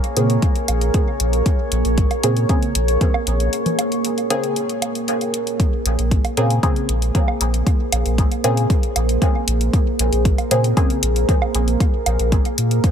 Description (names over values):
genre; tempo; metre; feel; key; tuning
dub techno; 116 BPM; 4/4; straight; Bb minor; A4 = 439 Hz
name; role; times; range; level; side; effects
deep dark ambient pad; sustained chords; 0.0-12.9 s; Bb3 to Db5; -23 LUFS; right 1 dB; chorus, built-in reverb, sidechain pumping
electronic hi-hat; drums; 0.0-12.9 s; none; -25 LUFS; left 2 dB; none
filtered dub chord stab; stabs; 0.2-11.0 s; Db3 to Ab4; -24 LUFS; equal; chorus, phaser, sidechain pumping, dub echo
warm sub bass; bass; 0.2-12.8 s; Bb1 to Bb2; -19 LUFS; equal; sidechain pumping
electronic kick drum; drums; 0.4-12.9 s; none; -17 LUFS; equal; none
woodblock and congas; percussion; 0.7-12.2 s; none; -29 LUFS; right 4 dB; sidechain pumping on perc, dub echo
room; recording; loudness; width
little or no reverb; none; -16 LUFS; side -8 dB against mid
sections
0.0-12.9 A section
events
filter sweep on synth stab 0.0-12.9; break 3.5-5.6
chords
0.0 Bbm9